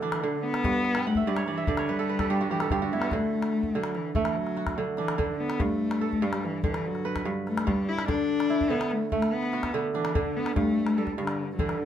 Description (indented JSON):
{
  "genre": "west african traditional, West African string and xylophone music",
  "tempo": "97 BPM (dotted quarters)",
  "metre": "12/8",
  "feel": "straight",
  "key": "D major",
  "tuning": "A4 = 440 Hz",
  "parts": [
    { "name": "dark cello", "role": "melody", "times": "0.0-11.9 s", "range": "D3 to E4", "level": "-28 LUFS", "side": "left 4 dB", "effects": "none" },
    { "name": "kora", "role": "arpeggios", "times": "0.0-11.9 s", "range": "G2 to G5", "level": "-29 LUFS", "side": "right 5 dB", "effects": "none" },
    { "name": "calabash", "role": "percussion", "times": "0.0-11.8 s", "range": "none", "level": "-33 LUFS", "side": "left 2 dB", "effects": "none" }
  ],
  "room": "moderate studio reverb, RT60 0.5 s",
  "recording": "minimal, uncompressed stereo recording",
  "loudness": "-25 LUFS",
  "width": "side -10 dB against mid",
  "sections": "0.0-11.9 A section",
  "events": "kora fill 1.0-3.1",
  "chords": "0.0 D; 0.7 G; 3.1 D; 5.6 G; 8.1 D; 10.6 G5"
}